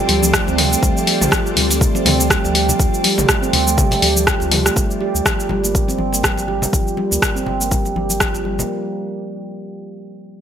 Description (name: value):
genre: afro house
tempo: 122 BPM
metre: 4/4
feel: swing 57% on 16ths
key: unclear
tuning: A4 = 440 Hz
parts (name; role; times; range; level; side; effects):
- ethereal airy pad; sustained chords; 0.0-4.7 s; F3 to D5; -25 LUFS; equal; ensemble chorus, built-in reverb, phaser, sidechain pumping
- handpan; arpeggios; 0.1-8.7 s; F3 to G4; -20 LUFS; right 2 dB; vintage 12-bit sampler grit, sidechain pumping, low-pass filter, digital delay
- warm sub bass; bass; 0.1-8.6 s; G1 to D2; -22 LUFS; left 1 dB; sidechain pumping
- deep house drum kit; drums; 0.1-8.7 s; cabasa, hi-hat, rim click, toms; -18 LUFS; left 1 dB; none
- congas; percussion; 0.1-8.7 s; none; -28 LUFS; left 2 dB; none
- electronic kick drum; drums; 0.3-8.3 s; none; -19 LUFS; left 1 dB; none
room: light reverb, digital ambience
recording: none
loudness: -14 LUFS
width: side -9 dB against mid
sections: 0.0-4.8 A section; 4.8-8.7 B section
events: drop 0.0-4.8; filter sweep on handpan 4.8-8.7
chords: 0.0 Dm7; 4.8 Gm